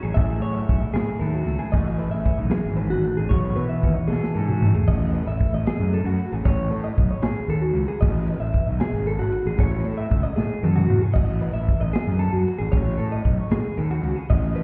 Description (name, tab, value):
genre	math rock and midwest emo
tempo	76 BPM (dotted quarters)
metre	6/8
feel	straight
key	unclear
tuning	A4 = 439 Hz
part	twelve-string electric guitar	accompaniment	0.0-6.5 s	F#2 to A4	-30 LUFS	equal	none
part	twelve-string electric guitar	arpeggios	0.0-14.6 s	F#4 to E5	-31 LUFS	equal	none
part	fuzz fingered electric bass	bass	0.0-14.6 s	G#1 to B2	-26 LUFS	equal	overdrive
part	modern studio drum kit	drums	0.2-14.6 s	crash cymbal, kick drum, ride cymbal, snare drum, toms	-25 LUFS	equal	none
room	little or no reverb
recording	heard muffled through a wall, stone room reverb, EQ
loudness	-22 LUFS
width	mono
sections	0.0-4.9 A section; 4.9-14.6 B section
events	drum fill 4.1-4.9, 10.4-11.2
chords	0.0 B13/A (rootless); 1.7 C#m9; 4.9 B13/A (rootless); 6.4 F#madd9/A; 8.0 G#m7; 9.6 A6; 11.2 B6/A (rootless); 12.7 F#madd9/A